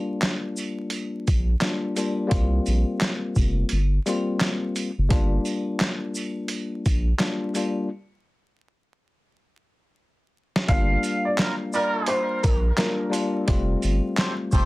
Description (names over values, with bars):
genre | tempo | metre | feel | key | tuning
hip hop, boom-bap hip-hop | 86 BPM | 4/4 | swing 62% on 16ths | G minor | A4 = 440 Hz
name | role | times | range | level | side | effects
tine electric piano | accompaniment | 0.0-14.7 s | G3 to F4 | -27 LUFS | left 2 dB | high-pass filter, low-pass filter
boom bap sampler-style drum kit | drums | 0.2-14.7 s | handclaps, hi-hat, kick drum, shaker, snare drum | -23 LUFS | equal | none
sleigh bells | percussion | 0.2-14.7 s | none | -39 LUFS | right 6 dB | none
saturated sub bass | bass | 1.3-14.7 s | F1 to C2 | -22 LUFS | equal | none
dark upright piano | melody | 10.7-13.1 s | Bb4 to F5 | -26 LUFS | equal | high-pass filter, low-pass filter
muted trumpet section | stabs | 11.4-14.7 s | G3 to C5 | -30 LUFS | right 2 dB | high-pass filter, low-pass filter, digital delay
room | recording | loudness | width
light reverb | dense, heavily limited modern master, vinyl crackle | -22 LUFS | side -20 dB against mid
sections
0.0-10.7 A section; 10.7-14.7 B section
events
break 7.9-10.7; drum fill 9.3-10.7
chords
0.0 Gm7; 2.3 C7sus4; 5.1 Gm7; 7.9 N.C.; 10.7 Gm7; 13.5 Fadd9